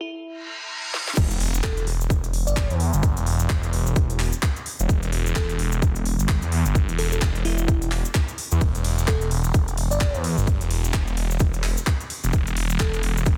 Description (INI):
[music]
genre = bass house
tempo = 129 BPM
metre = 4/4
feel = swing 59% on 16ths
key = E minor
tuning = A4 = 440 Hz
[part]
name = bell-like FM electric piano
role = melody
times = 0.0-13.0 s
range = E4 to D5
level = -35 LUFS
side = equal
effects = chorus, digital delay
[part]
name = reverse cymbal and impact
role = sound effects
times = 0.4-3.0 s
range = none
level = -35 LUFS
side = equal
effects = none
[part]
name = garage drum kit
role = drums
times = 0.9-13.4 s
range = crash cymbal, handclaps, hi-hat, ride cymbal, snare drum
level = -33 LUFS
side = equal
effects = soft clipping on snare
[part]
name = phased detuned saw bass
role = bass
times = 1.2-13.4 s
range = E1 to E2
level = -25 LUFS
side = equal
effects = phaser, tube saturation, sidechain pumping
[part]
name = electronic kick drum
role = drums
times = 1.2-13.4 s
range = none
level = -25 LUFS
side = equal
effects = none
[part]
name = cabasa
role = percussion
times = 1.2-13.4 s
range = none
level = -38 LUFS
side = equal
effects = none
[sound]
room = digital ambience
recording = dense, heavily limited modern master, high-pass filter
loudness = -23 LUFS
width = mono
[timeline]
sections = 0.0-1.2 A section; 1.2-13.4 B section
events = break 0.0-1.2; build-up 0.0-1.2; filter sweep 0.0-1.2; reverse cymbal 0.4-1.2; drum fill 0.9; drop 1.2-13.4; impact 1.2-3.0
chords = 0.0 E5; 1.2 N.C.